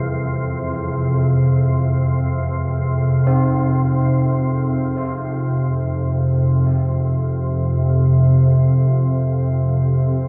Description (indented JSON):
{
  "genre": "ambient",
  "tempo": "free time",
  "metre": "none",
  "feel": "none",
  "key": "F harmonic minor",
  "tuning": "A4 = 441 Hz",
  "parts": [
    { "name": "old church bells", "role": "arpeggios", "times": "0.0-10.1 s", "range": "E3 to C4", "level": "-30 LUFS", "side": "equal", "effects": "tape echo" },
    { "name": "organ-like drone", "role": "drone", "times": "0.0-10.3 s", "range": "F2 to C3", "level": "-18 LUFS", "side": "equal", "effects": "ensemble chorus, built-in reverb" },
    { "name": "quartz singing bowl", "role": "texture", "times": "0.0-5.4 s", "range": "Ab4", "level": "-41 LUFS", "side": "equal", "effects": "none" }
  ],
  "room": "wet cathedral reverb, RT60 5.2 s",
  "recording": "in a vast, echoing space",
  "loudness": "-18 LUFS",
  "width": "mono",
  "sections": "0.0-5.4 A section; 5.4-10.3 B section",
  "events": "filter sweep on synth drone 5.4-10.3",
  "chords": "0.0 Fmmaj7; 5.4 F5"
}